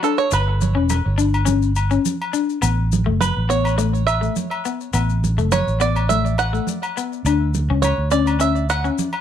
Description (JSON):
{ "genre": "highlife guitar band", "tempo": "104 BPM", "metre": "4/4", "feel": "straight", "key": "unclear", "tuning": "A4 = 439 Hz", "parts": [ { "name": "electric guitar at the edge of break-up", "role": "accompaniment", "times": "0.0-9.1 s", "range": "A3 to D4", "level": "-22 LUFS", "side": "left 8 dB", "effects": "wide subtle chorus" }, { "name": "bluegrass banjo", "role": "arpeggios", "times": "0.0-8.9 s", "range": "A4 to F#5", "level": "-22 LUFS", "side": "right 6 dB", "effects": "tape echo, plate reverb" }, { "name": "maracas", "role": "percussion", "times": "0.0-9.1 s", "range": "none", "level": "-31 LUFS", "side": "left 18 dB", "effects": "none" }, { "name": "fingered electric bass", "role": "bass", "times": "0.3-8.9 s", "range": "E1 to D2", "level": "-19 LUFS", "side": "equal", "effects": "none" }, { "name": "agogo bells", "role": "percussion", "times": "0.3-9.2 s", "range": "none", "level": "-29 LUFS", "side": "left 6 dB", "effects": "none" }, { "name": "congas", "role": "percussion", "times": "0.3-9.1 s", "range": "none", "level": "-26 LUFS", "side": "right 7 dB", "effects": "none" } ], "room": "light reverb", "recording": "none", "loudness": "-17 LUFS", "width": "side -9 dB against mid", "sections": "0.0-9.2 A section", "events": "five-string banjo solo 0.0-9.2", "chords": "0.3 G; 2.6 Asus2; 7.2 Dmaj7sus2/C#", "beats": "| 0.33 0.90 1.48 2.06 | 2.63 3.21 3.79 4.36 | 4.94 5.52 6.09 6.67 | 7.25 7.82 8.40 8.97" }